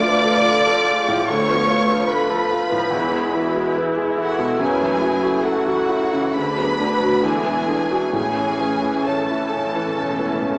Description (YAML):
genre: classical, romantic movement for piano and orchestra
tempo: 64-74 BPM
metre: 4/4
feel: rubato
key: A major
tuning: A4 = 441 Hz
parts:
  - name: clear grand piano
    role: melody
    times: 0.0-10.6 s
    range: D2 to C#5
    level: -22 LUFS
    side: equal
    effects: none
  - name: warm studio violin section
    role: melody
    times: 0.0-10.6 s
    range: F#5 to D6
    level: -24 LUFS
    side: equal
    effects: none
  - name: dark studio violin section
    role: second line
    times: 0.0-10.6 s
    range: F#4 to D5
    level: -24 LUFS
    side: equal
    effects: none
  - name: rich studio viola section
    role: accompaniment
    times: 0.0-10.6 s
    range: C#3 to F4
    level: -25 LUFS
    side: equal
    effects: none
  - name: mellow French horn section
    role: sustained chords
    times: 0.0-10.6 s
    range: C#4 to B4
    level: -25 LUFS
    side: equal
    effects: none
  - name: rich studio cello section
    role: bass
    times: 0.0-10.6 s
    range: D2 to A2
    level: -29 LUFS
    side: equal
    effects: none
  - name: rich studio double bass section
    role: bass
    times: 0.0-10.6 s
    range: E1 to D2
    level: -31 LUFS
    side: equal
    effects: none
  - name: timpani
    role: percussion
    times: 8.1-10.6 s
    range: A2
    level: -36 LUFS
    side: equal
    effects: none
room: wet recital hall reverb, RT60 1.4 s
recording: small speaker sound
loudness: -16 LUFS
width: side -34 dB against mid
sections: 0.0-10.6 A section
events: timpani fill 8.1-10.6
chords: 0.0 Dm; 1.3 Bm7b5/D; 2.9 E; 4.6 F#m7; 6.3 Bm/D; 7.2 E9; 8.1 A